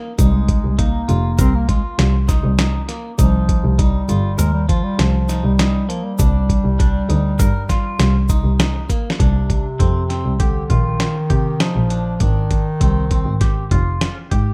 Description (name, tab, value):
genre	progressive instrumental, band music in an uneven meter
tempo	100 BPM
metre	5/4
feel	straight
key	C minor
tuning	A4 = 440 Hz
part	clean electric guitar	arpeggios	0.0-14.5 s	Bb3 to Bb4	-31 LUFS	equal	spring reverb
part	mellow bass clarinet	melody	0.2-14.0 s	C3 to C4	-25 LUFS	equal	none
part	rich double bass	bass	0.2-14.5 s	F1 to C3	-20 LUFS	equal	none
part	dusty soul sampler-style drum kit	drums	0.2-14.5 s	hi-hat, kick drum, snare drum	-21 LUFS	equal	none
part	tube shaker	percussion	0.2-9.0 s	none	-36 LUFS	equal	none
room	studio reverb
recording	rough home demo mix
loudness	-17 LUFS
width	mono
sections	0.0-9.2 A section; 9.2-14.5 B section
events	drum fill 8.9-9.2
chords	0.2 Abadd9; 3.2 Bbsus4; 6.2 Ebmaj7/C; 9.2 Cm7; 12.2 Ab6